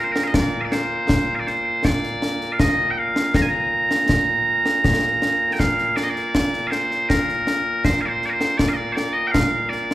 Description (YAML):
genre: scottish traditional, Scottish pipe music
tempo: 80 BPM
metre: 3/4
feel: straight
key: Bb major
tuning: A4 = 436 Hz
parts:
  - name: loud bright bagpipes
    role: melody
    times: 0.0-9.9 s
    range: Bb2 to Bb5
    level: -20 LUFS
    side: right 1 dB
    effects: none
  - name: concert snare drum and concert bass drum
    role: drums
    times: 0.2-9.9 s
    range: none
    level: -22 LUFS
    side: equal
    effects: none
room: wet recital hall reverb, RT60 1.5 s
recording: recorded in a church or concert hall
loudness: -18 LUFS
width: side -15 dB against mid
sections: 0.0-5.6 A section; 5.6-9.9 B section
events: none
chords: none